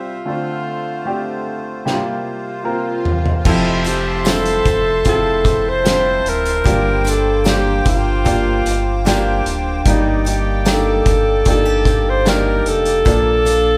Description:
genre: pop ballad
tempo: 75 BPM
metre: 4/4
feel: straight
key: F major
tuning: A4 = 440 Hz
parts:
  - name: clear alto saxophone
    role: melody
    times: 0.0-13.8 s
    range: Eb4 to C5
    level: -20 LUFS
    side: equal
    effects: none
  - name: clear baby grand piano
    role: accompaniment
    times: 0.0-13.8 s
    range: G2 to E5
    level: -24 LUFS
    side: equal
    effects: none
  - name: accordion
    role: sustained chords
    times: 0.0-13.8 s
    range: C3 to D6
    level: -28 LUFS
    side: equal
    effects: light tremolo tuning
  - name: swell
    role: sound effects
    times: 1.7-3.5 s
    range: none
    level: -30 LUFS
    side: equal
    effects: none
  - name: loose indie drum kit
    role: drums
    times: 1.9-13.6 s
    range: crash cymbal, hi-hat, kick drum, snare drum, toms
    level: -21 LUFS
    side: equal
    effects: none
  - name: picked steel-string acoustic guitar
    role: arpeggios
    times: 3.5-13.8 s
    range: Bb2 to D5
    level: -30 LUFS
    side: equal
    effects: none
  - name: sub bass with octave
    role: bass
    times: 3.5-13.8 s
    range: D1 to Bb1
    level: -23 LUFS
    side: equal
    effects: none
  - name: tambourine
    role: percussion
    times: 3.5-13.6 s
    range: none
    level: -39 LUFS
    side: equal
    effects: none
room: moderate large studio reverb, RT60 1.4 s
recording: band playing live in one room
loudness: -16 LUFS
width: mono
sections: 0.0-3.5 A section; 3.5-13.8 B section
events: swell 1.7-3.5; drum fill 1.9-3.5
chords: 0.3 Dm7; 1.9 C7sus4; 3.5 Fmaj7; 6.7 Gm7; 9.9 Ebmaj7/G; 13.1 Bbmaj7

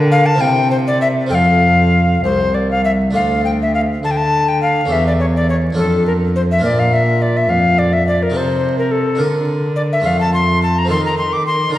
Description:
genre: classical, baroque-style sonata movement with continuo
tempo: 65-72 BPM (dotted quarters)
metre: 6/8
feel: rubato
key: F major, D minor from 3.2 s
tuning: A4 = 442 Hz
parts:
  - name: harpsichord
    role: accompaniment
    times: 0.0-11.8 s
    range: C2 to Bb4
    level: -22 LUFS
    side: equal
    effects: none
  - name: warm cello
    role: bass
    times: 0.0-11.8 s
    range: C2 to Eb3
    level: -16 LUFS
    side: equal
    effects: none
  - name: alto recorder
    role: melody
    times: 0.1-11.8 s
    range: A4 to D6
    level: -16 LUFS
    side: left 2 dB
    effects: none
room: wet recital hall reverb, RT60 1.9 s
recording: heard from further back in the room, vinyl crackle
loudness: -13 LUFS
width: side -14 dB against mid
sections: 0.0-3.2 A section; 3.2-11.8 A section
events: none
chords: 0.4 C7; 1.3 F; 3.2 Dm; 4.9 A7/E; 5.8 Dm/F; 6.6 Bb; 8.3 F7/C; 9.2 Bb/D; 10.0 F; 10.9 F7/Eb

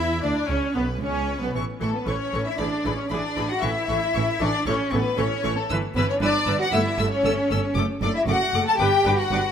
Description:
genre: quick classical-period movement for string orchestra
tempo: 116 BPM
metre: 4/4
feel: rubato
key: A major, D major from 5.7 s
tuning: A4 = 444 Hz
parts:
  - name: rich chamber violin section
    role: melody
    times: 0.0-9.4 s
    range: B4 to E6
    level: -33 LUFS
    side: left 4 dB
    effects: none
  - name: warm studio violin section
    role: second line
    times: 0.0-9.5 s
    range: A4 to A5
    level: -25 LUFS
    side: left 4 dB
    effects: none
  - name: rich chamber viola section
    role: accompaniment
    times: 0.0-9.4 s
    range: E3 to B4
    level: -28 LUFS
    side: equal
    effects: none
  - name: rich chamber cello section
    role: bass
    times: 0.0-9.5 s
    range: A3 to A4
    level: -27 LUFS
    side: right 2 dB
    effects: none
  - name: rich chamber double bass section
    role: bass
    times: 0.0-9.4 s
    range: F#1 to E2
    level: -27 LUFS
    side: right 3 dB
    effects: none
room: moderate concert hall reverb, RT60 2.2 s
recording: none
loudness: -21 LUFS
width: side -8 dB against mid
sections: 0.0-9.5 A section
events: none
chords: 0.0 E5; 1.6 A; 2.6 E7/A; 3.6 A; 5.7 Em7/G; 6.7 A7/G; 7.8 D/F#; 8.8 G

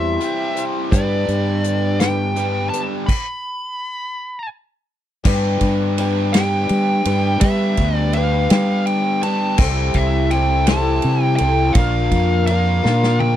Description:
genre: folk rock and heartland rock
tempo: 55 BPM (dotted quarters)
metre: 6/8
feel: straight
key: unclear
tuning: A4 = 444 Hz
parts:
  - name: dark smooth lead guitar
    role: melody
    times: 0.0-13.4 s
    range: D5 to B5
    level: -23 LUFS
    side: equal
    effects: overdrive
  - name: picked twelve-string acoustic guitar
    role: accompaniment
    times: 0.0-13.4 s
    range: Bb2 to C5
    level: -24 LUFS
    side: left 6 dB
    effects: none
  - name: biting overdriven guitar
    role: riff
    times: 0.0-13.4 s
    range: G2 to Bb4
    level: -24 LUFS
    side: right 3 dB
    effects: none
  - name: fingered electric bass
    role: bass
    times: 0.0-13.4 s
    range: Bb1 to G3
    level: -19 LUFS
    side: equal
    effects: none
  - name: natural country drum kit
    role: drums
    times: 0.2-13.4 s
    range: crash cymbal, hi-hat, kick drum, ride cymbal, snare drum, toms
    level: -20 LUFS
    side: equal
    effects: none
room: little or no reverb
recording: dry, close 1970s-style studio recording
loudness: -16 LUFS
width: side -11 dB against mid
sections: 0.0-5.3 A section; 5.3-13.4 B section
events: stop 3.1-5.3; drum fill 12.8-13.4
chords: 0.0 C/E; 0.9 G; 9.6 C6; 11.8 Bb

